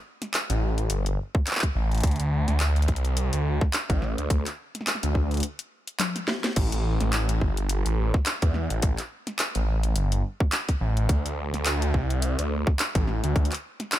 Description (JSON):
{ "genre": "glitch hop", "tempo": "106 BPM", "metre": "4/4", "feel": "swing 57% on 16ths", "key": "A minor", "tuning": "A4 = 438 Hz", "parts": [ { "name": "drum and bass drum kit", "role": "drums", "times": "0.2-14.0 s", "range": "crash cymbal, handclaps, hi-hat, snare drum, toms", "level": "-29 LUFS", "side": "equal", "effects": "overdrive" }, { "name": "phased detuned saw bass", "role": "bass", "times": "0.5-13.5 s", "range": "G1 to E2", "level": "-24 LUFS", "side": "equal", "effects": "phaser, overdrive" }, { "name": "electronic kick drum", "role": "drums", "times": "1.3-13.5 s", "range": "none", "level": "-24 LUFS", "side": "equal", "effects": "overdrive" } ], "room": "digital ambience", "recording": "none", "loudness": "-23 LUFS", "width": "side -13 dB against mid", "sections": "0.0-14.0 A section", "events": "break 5.4-6.6; drum fill 6.0-6.6", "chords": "none", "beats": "0.34 0.91 1.47 | 2.04 2.60 3.17 3.74 | 4.30 4.87 5.43 6.00 | 6.57 7.13 7.70 8.27 | 8.83 9.40 9.96 10.53 | 11.10 11.66 12.23 12.79 | 13.36 13.93" }